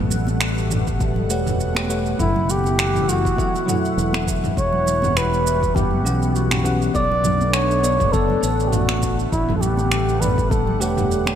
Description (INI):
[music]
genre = sunset chillout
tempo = 101 BPM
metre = 4/4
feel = swing 55% on 16ths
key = unclear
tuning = A4 = 440 Hz
[part]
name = lush unison pad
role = sustained chords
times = 0.0-11.4 s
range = B2 to F#5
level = -26 LUFS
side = left 1 dB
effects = chorus, phaser
[part]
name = fretless electric bass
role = bass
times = 0.0-11.4 s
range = E1 to B1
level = -22 LUFS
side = equal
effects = none
[part]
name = deep house drum kit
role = drums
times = 0.1-11.4 s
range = finger snaps, shaker, toms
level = -25 LUFS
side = right 1 dB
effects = overdrive, gated reverb
[part]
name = congas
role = percussion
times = 0.1-11.4 s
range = none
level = -32 LUFS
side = right 3 dB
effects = none
[part]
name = electronic kick drum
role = drums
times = 0.9-10.6 s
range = none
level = -25 LUFS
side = equal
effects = overdrive
[part]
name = bell-like tine electric piano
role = accompaniment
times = 1.3-11.4 s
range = E3 to G5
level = -27 LUFS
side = moving between left 4 dB and right 4 dB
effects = auto-pan, digital delay
[part]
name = trumpet with bucket mute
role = melody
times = 2.2-11.4 s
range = E4 to D5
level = -22 LUFS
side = equal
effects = digital delay
[sound]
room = moderate lush hall reverb, RT60 2.9 s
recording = bright 1980s-style digital production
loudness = -17 LUFS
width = side -9 dB against mid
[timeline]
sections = 0.0-11.4 A section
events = none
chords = 0.0 A13; 2.2 F#m7; 4.6 Em69; 6.9 Bm9; 9.3 A13